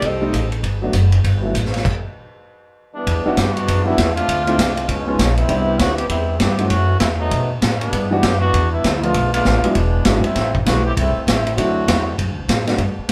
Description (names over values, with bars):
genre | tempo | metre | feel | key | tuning
jazz, big band swing | 197 BPM | 4/4 | swing 62% on 8ths | unclear | A4 = 439 Hz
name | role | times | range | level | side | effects
mellow saxophone section | melody | 0.0-0.5 s | C4 to Eb5 | -25 LUFS | equal | none
upright bass | bass | 0.0-13.1 s | E1 to B2 | -22 LUFS | equal | none
vintage drum kit | drums | 0.0-13.1 s | crash cymbal, hi-hat, kick drum, ride cymbal, snare drum | -23 LUFS | equal | none
warm concert grand piano | accompaniment | 0.2-12.8 s | E3 to F#4 | -24 LUFS | equal | none
bright trombone section | second line | 2.9-12.2 s | D3 to G4 | -24 LUFS | equal | none
room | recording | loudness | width
moderate studio reverb, RT60 0.8 s | band playing live in one room | -18 LUFS | mono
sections
0.0-3.1 A section; 3.1-12.8 B section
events
stop 1.9-3.1; trombone section solo 3.1-12.8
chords
0.0 Am7b5; 0.6 Gmaj9; 1.9 N.C.; 3.1 Em7; 4.3 Dm7; 4.9 C#9; 5.5 Cmaj7; 6.7 F#m7; 7.3 B5; 7.9 Em7; 9.1 Bm7b5; 9.8 E7; 10.4 Am7; 11.6 D7